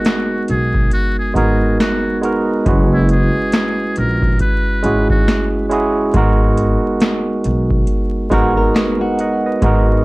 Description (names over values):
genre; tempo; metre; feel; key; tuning
lo-fi hip hop; 69 BPM; 4/4; swing 59% on 16ths; G# minor; A4 = 440 Hz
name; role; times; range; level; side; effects
trumpet with metal mute; melody; 0.0-5.5 s; E4 to B4; -23 LUFS; equal; low-pass filter, analog delay
barky tine electric piano; accompaniment; 0.0-10.0 s; G#3 to F#5; -17 LUFS; right 2 dB; low-pass filter
booming analog drum machine; drums; 0.0-9.9 s; hi-hat, kick drum, snare drum; -18 LUFS; equal; overdrive
upright bass; bass; 0.5-10.0 s; F#1 to B1; -17 LUFS; equal; transformer saturation
flamenco guitar; second line; 8.3-9.6 s; F#4 to A#4; -22 LUFS; left 1 dB; low-pass filter, analog delay
room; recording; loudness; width
little or no reverb; dry, gritty hardware recording, vinyl crackle; -13 LUFS; side -22 dB against mid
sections
0.0-10.0 A section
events
none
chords
0.0 G#m7; 2.7 F#7sus4; 6.1 G#m7